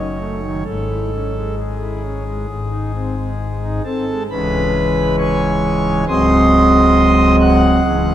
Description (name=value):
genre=classical, chorale-style piece for pipe organ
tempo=67 BPM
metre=4/4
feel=rubato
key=C# minor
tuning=A4 = 439 Hz
part: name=pipe organ, foundations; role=solo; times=0.0-8.1 s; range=C#1 to F#6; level=-14 LUFS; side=equal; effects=none
room=wet church reverb, RT60 3.6 s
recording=dark, warm production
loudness=-14 LUFS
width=side -11 dB against mid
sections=0.0-4.3 A section; 4.3-8.1 B section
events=none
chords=0.0 D#m7b5/F#; 0.7 C#m/G#; 2.5 G#; 4.3 C#m; 6.1 G#7/C#